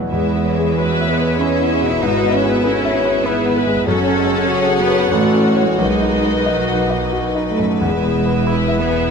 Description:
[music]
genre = classical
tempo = 86-99 BPM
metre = 3/4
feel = rubato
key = E major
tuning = A4 = 438 Hz
[part]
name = clear concert grand piano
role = melody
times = 0.0-9.1 s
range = A1 to F#5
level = -19 LUFS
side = left 1 dB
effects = none
[part]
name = mellow hollow flute section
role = second line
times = 0.0-9.1 s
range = F#4 to E5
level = -24 LUFS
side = left 5 dB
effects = none
[part]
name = rich chamber cello section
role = bass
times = 0.0-9.1 s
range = F#3 to E4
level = -21 LUFS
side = right 4 dB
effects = none
[part]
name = rich studio violin section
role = melody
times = 0.1-9.1 s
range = D#5 to F#5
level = -26 LUFS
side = left 4 dB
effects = none
[part]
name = mellow clarinet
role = second line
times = 0.1-9.1 s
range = F#4 to C#5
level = -29 LUFS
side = left 2 dB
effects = none
[part]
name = rich studio violin section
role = second line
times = 0.1-9.1 s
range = E4 to C#5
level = -27 LUFS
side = left 4 dB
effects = none
[part]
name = mellow bassoon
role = accompaniment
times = 0.1-9.1 s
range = D#3 to G#3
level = -27 LUFS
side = right 1 dB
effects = none
[part]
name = mellow French horn section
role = sustained chords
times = 0.1-9.1 s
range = D#4 to B4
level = -26 LUFS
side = left 2 dB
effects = none
[part]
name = rich studio double bass section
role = bass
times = 0.1-9.1 s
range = E1 to E2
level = -25 LUFS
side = right 6 dB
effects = none
[part]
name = rich studio viola section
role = accompaniment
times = 0.8-9.1 s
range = D#4 to B4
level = -25 LUFS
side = equal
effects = none
[sound]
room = light reverb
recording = close, detailed microphones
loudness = -14 LUFS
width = side -6 dB against mid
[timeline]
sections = 0.1-9.1 A section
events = none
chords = 0.1 E; 2.0 E/G#; 3.9 F#m; 5.1 F#m/A; 5.8 B; 7.8 E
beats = | 0.12 0.77 1.40 | 2.02 2.64 3.25 | 3.87 4.48 5.12 | 5.79 6.46 7.14 | 7.82 8.48

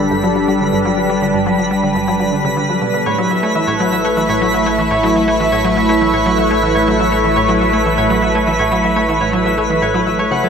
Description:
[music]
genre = ambient, sequencer-driven space music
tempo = 122 BPM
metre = 4/4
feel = straight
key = unclear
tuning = A4 = 437 Hz
[part]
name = phased analog pad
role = sustained chords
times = 0.0-10.5 s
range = G3 to C#6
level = -16 LUFS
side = right 1 dB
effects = phaser, chorus
[part]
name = resonant blip pluck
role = riff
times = 0.0-10.5 s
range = G2 to B3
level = -19 LUFS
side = equal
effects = chorus, tape echo
[part]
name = round analog bass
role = bass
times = 0.0-10.5 s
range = G1 to A1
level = -26 LUFS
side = equal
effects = none
[part]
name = twinkling granular texture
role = texture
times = 0.0-10.5 s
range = B5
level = -22 LUFS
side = right 2 dB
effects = built-in reverb
[part]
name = concert harp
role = arpeggios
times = 3.1-10.5 s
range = E4 to F#5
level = -20 LUFS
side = left 3 dB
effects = auto-pan, tape echo
[sound]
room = wet lush hall reverb, RT60 2.7 s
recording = dreamy mix soaked in reverb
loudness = -12 LUFS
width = side -6 dB against mid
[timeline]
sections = 0.0-10.5 A section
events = fade-in on analog synth bass 0.0-10.5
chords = 0.0 Gmaj7; 3.1 A6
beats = 0.11 0.60 | 1.09 1.59 2.08 2.57 | 3.06 3.55 4.04 4.54 | 5.03 5.52 6.01 6.50 | 7.00 7.49 7.98 8.47 | 8.96 9.46 9.95 10.44

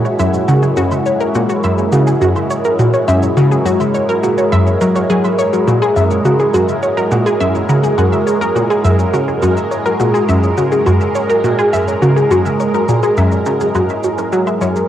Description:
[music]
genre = ambient, sequencer-driven space music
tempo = 104 BPM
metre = 4/4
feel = straight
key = unclear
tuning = A4 = 440 Hz
[part]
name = lush unison pad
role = sustained chords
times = 0.0-14.9 s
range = G#3 to C#5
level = -18 LUFS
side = equal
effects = chorus, phaser, cassette tape
[part]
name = wide unison pluck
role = arpeggios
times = 0.0-14.8 s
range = F#4 to E5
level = -16 LUFS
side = moving between left 4 dB and right 2 dB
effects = auto-pan, vintage 12-bit sampler grit, cassette tape, tape echo
[part]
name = analog pluck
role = riff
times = 0.0-14.8 s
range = F#2 to F#3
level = -16 LUFS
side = equal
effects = chorus, cassette tape, tape echo
[part]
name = wind-like tuned noise texture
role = texture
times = 0.0-14.9 s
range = G#4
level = -24 LUFS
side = right 4 dB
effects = built-in reverb, cassette tape
[part]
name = shaker and woodblock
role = percussion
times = 0.1-14.9 s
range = none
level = -31 LUFS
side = right 1 dB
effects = cassette tape, tape echo
[sound]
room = moderate spring reverb, RT60 1.2 s, digital ambience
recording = home recording on cassette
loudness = -11 LUFS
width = side -11 dB against mid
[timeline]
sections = 0.0-14.9 A section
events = none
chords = 0.0 F#9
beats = 0.48 | 1.06 1.64 2.21 2.79 | 3.37 3.94 4.52 5.10 | 5.67 6.25 6.83 7.41 | 7.98 8.56 9.14 9.71 | 10.29 10.87 11.44 12.02 | 12.60 13.18 13.75 14.33

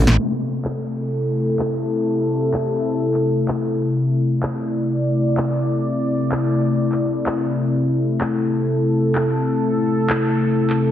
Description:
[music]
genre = bass house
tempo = 127 BPM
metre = 4/4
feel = swing 55% on 16ths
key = A minor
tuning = A4 = 441 Hz
[part]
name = sweeping resonant pad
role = sustained chords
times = 0.0-10.9 s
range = C3 to D5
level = -18 LUFS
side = left 1 dB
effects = chorus
[part]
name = electronic snare drum and handclaps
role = drums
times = 0.1-10.8 s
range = none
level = -26 LUFS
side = equal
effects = low-pass filter on hats, small room ambience, low-pass filter on perc, low-pass filter on snare, low-pass filter on toms
[part]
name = downlifter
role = sound effects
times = 0.4-4.0 s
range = none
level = -45 LUFS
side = equal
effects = none
[sound]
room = wet lush hall reverb, RT60 1.7 s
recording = heavily compressed radio sound, low-pass filter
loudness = -18 LUFS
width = side -10 dB against mid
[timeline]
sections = 0.2-10.9 A section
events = drum fill 0.0; band accent 0.1; filter sweep on analog synth pad 0.2-10.9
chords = 0.2 Am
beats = | 0.18 0.65 1.12 1.60 | 2.07 2.54 3.01 3.49 | 3.96 4.43 4.90 5.38 | 5.85 6.32 6.79 7.27 | 7.74 8.21 8.68 9.16 | 9.63 10.10 10.57

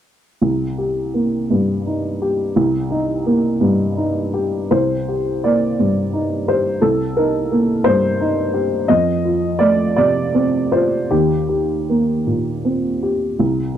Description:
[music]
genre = neoclassical minimalist piano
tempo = 51-59 BPM (dotted quarters)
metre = 6/8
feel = rubato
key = C dorian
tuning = A4 = 440 Hz
[part]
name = dark upright piano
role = solo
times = 0.4-13.8 s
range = C2 to Eb5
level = -16 LUFS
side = equal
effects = none
[sound]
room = small room ambience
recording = dry, close 1970s-style studio recording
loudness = -16 LUFS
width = side -10 dB against mid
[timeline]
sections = 0.4-4.7 A section; 4.7-13.8 B section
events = none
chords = 0.4 Cm7; 8.9 F7; 11.1 Eb6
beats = | 0.42 1.51 | 2.56 3.60 | 4.72 5.79 | 6.83 7.85 | 8.88 9.97 | 11.11 12.27 | 13.40

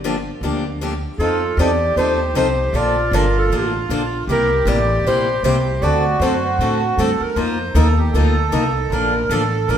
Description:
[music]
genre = acoustic string swing (jazz manouche)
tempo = 155 BPM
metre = 4/4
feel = swing 61% on 8ths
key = unclear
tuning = A4 = 441 Hz
[part]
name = picked steel-string acoustic guitar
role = accompaniment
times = 0.0-9.8 s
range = C3 to Bb4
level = -21 LUFS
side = left 2 dB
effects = none
[part]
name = upright bass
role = bass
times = 0.0-9.8 s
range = G1 to A2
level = -20 LUFS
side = equal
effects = none
[part]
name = warm clarinet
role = melody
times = 1.2-6.8 s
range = A4 to D5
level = -20 LUFS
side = left 1 dB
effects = none
[part]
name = accordion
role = second line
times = 1.2-9.8 s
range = F4 to C5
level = -22 LUFS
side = right 4 dB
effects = none
[sound]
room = wet stone room reverb, RT60 1.6 s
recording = band playing live in one room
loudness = -15 LUFS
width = side -9 dB against mid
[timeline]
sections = 0.0-1.2 A section; 1.2-9.8 B section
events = none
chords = 0.0 Gm7; 1.2 F7; 2.7 Bbmaj7; 4.3 C7; 5.8 D7; 7.4 F7sus4; 8.9 Bbmaj7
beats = 0.03 0.42 0.81 | 1.19 1.58 1.96 2.35 | 2.73 3.12 3.51 3.89 | 4.28 4.67 5.05 5.44 | 5.82 6.21 6.59 6.98 | 7.37 7.75 8.14 8.53 | 8.91 9.30 9.68

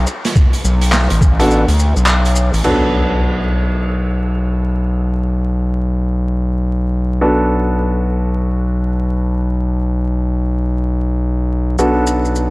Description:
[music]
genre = glitch hop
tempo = 105 BPM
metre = 4/4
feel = swing 63% on 16ths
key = B minor pentatonic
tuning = A4 = 439 Hz
[part]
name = gritty driven synth bass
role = bass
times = 0.0-12.5 s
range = A1 to D2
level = -15 LUFS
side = equal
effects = none
[part]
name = maracas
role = percussion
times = 0.1-2.6, 11.8-12.5 s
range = none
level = -28 LUFS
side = left 2 dB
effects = none
[part]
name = oversized low-tuned drum kit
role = drums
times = 0.2-2.8 s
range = crash cymbal, handclaps, hi-hat, snare drum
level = -21 LUFS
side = right 1 dB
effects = none
[part]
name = electronic kick drum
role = drums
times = 0.4-1.4 s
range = none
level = -11 LUFS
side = equal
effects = none
[part]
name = warm grand piano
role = stabs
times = 1.4-12.5 s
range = B3 to A4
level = -18 LUFS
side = equal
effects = sidechain pumping, low-pass filter, tape echo
[part]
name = impact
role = sound effects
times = 2.6-4.9 s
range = none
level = -25 LUFS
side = equal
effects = none
[sound]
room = small room ambience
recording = vinyl crackle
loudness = -13 LUFS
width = side -23 dB against mid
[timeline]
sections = 0.0-2.6 A section; 2.6-12.5 B section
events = kick drops out 1.5-2.6; impact 2.6-4.9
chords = 0.0 Bm7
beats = | 0.36 0.93 1.50 2.07 | 2.64 3.21 3.79 4.36 | 4.93 5.50 6.07 6.64 | 7.21 7.79 8.36 8.93 | 9.50 10.07 10.64 11.21 | 11.79 12.36

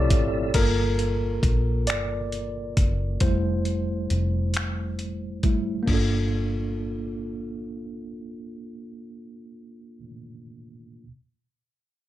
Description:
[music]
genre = slow six-eight R&B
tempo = 45 BPM (dotted quarters)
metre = 6/8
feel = straight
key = G dorian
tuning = A4 = 440 Hz
[part]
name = tine electric piano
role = accompaniment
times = 0.0-11.1 s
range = G3 to D5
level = -29 LUFS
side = right 1 dB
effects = overdrive, fast stereo tremolo
[part]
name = tonewheel organ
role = sustained chords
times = 0.0-0.5 s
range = F3 to E4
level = -34 LUFS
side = left 2 dB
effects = chorus vibrato, fast rotary speaker
[part]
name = vintage muted fingered electric bass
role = bass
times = 0.0-10.0 s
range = F1 to C2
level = -27 LUFS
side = equal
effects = none
[part]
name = dusty soul sampler-style drum kit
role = drums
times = 0.1-6.1 s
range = crash cymbal, finger snaps, hi-hat, kick drum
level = -24 LUFS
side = equal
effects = none
[sound]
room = light reverb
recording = none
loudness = -23 LUFS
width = side -14 dB against mid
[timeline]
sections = 0.5-5.9 A section; 5.9-8.5 B section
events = tine electric piano solo 0.5-5.9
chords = 0.0 Fmaj7; 0.5 Gm9; 3.2 Fmaj7; 5.9 Gm9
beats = | 0.54 1.88 | 3.21 4.54 | 5.88 7.21

